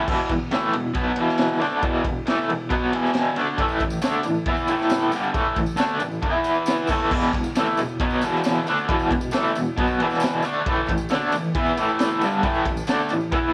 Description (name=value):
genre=garage rock duo or trio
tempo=136 BPM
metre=4/4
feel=straight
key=unclear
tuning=A4 = 440 Hz
part: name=raw garage guitar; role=riff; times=0.0-13.5 s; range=E2 to E4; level=-23 LUFS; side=equal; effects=overdrive, tremolo
part: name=raw garage drum kit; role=drums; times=0.1-13.4 s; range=crash cymbal, kick drum, ride cymbal, snare drum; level=-29 LUFS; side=equal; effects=cassette tape
part: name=tambourine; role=percussion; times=3.7-13.4 s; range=none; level=-47 LUFS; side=equal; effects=none
room=light reverb, studio reverb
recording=home recording on cassette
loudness=-22 LUFS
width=mono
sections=0.1-7.1 A section; 7.1-13.5 A section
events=none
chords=0.1 E5; 3.6 A5; 6.2 E5; 6.9 A5; 7.1 E5; 10.7 A5